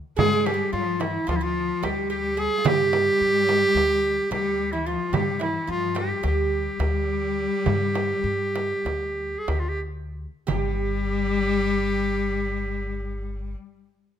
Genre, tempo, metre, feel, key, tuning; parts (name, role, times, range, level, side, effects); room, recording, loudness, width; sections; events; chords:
Turkish makam ensemble; 174-218 BPM (eighths); 9/8; straight; G makam hicaz; A4 = 445 Hz
bright clarinet; melody; 0.2-13.5 s; E4-42c to Ab4; -24 LUFS; right 2 dB
clear cello; second line; 0.2-13.5 s; E3-46c to Ab3; -29 LUFS; left 9 dB
oud; second line; 0.2-13.5 s; E4-40c to Ab4; -32 LUFS; right 6 dB
upright bass; bass; 0.2-13.5 s; G1 to G2; -30 LUFS; left 1 dB
frame drum; percussion; 0.2-10.8 s; -28 LUFS; right 5 dB
light reverb; minimal, uncompressed stereo recording; -22 LUFS; side -9 dB against mid
0.0-10.5 A section; 10.5-13.6 B section
slowing down 5.7-10.5